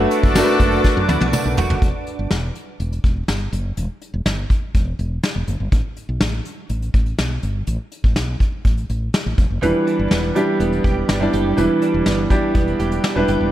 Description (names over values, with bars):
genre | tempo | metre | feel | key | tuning
1980s-style pop | 123 BPM | 4/4 | straight | E minor | A4 = 440 Hz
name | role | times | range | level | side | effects
clear concert grand piano | accompaniment | 0.0-1.8, 9.6-13.5 s | E3 to D5 | -18 LUFS | equal | none
soft string machine | sustained chords | 0.0-1.8 s | B4 to D6 | -29 LUFS | left 1 dB | ensemble chorus
direct-recorded clean electric guitar | riff | 0.0-2.4, 9.6-13.5 s | E3 to G4 | -25 LUFS | right 6 dB | ensemble chorus, tape echo
clear horn section | stabs | 0.0-1.5 s | D4 to A4 | -24 LUFS | left 3 dB | none
woody fretless electric bass | bass | 0.0-13.5 s | E1 to F#2 | -22 LUFS | equal | none
vintage brush drum kit | drums | 0.1-13.4 s | hi-hat, kick drum, snare drum, tambourine, toms | -20 LUFS | equal | none
tambourine | percussion | 0.1-1.7 s | none | -36 LUFS | left 7 dB | none
room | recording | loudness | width
light reverb, studio reverb | none | -17 LUFS | side -13 dB against mid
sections
0.0-1.8 A section; 1.8-13.5 B section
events
drum fill 0.8-1.8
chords
0.0 Bm7/F#; 1.8 Em; 5.7 Gadd9 (rootless); 9.4 Em7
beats
0.36 0.85 1.33 | 1.82 2.31 2.80 3.29 | 3.77 4.26 4.75 5.24 | 5.72 6.21 6.70 7.19 | 7.68 8.16 8.65 9.14 | 9.63 10.12 10.60 11.09 | 11.58 12.07 12.55 13.04